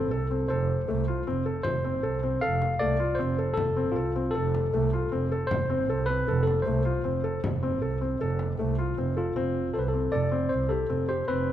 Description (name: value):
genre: contemporary instrumental, chamber music in an uneven meter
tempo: 156 BPM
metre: 5/4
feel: straight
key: F lydian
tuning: A4 = 442 Hz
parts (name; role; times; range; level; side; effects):
- overdriven tine electric piano; melody; 0.0-11.5 s; F4 to F5; -30 LUFS; left 2 dB; none
- felt-muted upright piano; arpeggios; 0.0-11.5 s; A3 to C5; -30 LUFS; left 2 dB; none
- rich double bass; bass; 0.0-11.5 s; F1 to C2; -29 LUFS; right 3 dB; none
- frame drum; percussion; 1.6-8.7 s; none; -35 LUFS; left 2 dB; none
room: light reverb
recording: dark, warm production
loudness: -25 LUFS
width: side -11 dB against mid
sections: 0.0-9.4 A section; 9.4-11.5 B section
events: none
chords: 0.0 F